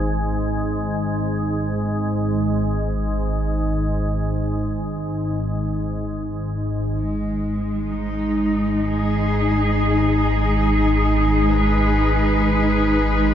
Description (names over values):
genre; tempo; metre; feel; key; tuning
dark ambient drone; free time; none; none; G# minor; A4 = 440 Hz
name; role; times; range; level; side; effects
organ-like drone; drone; 0.0-13.3 s; G#1 to G#2; -20 LUFS; equal; ensemble chorus, built-in reverb
rich symphonic cello section; sustained chords; 7.0-13.3 s; G#3 to B4; -20 LUFS; equal; none
room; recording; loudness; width
wet cathedral reverb, RT60 5.6 s; dark, warm production, nothing above 7.6 kHz; -18 LUFS; side -10 dB against mid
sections
0.0-7.0 A section; 7.0-13.3 B section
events
none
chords
0.0 N.C.; 7.0 G#m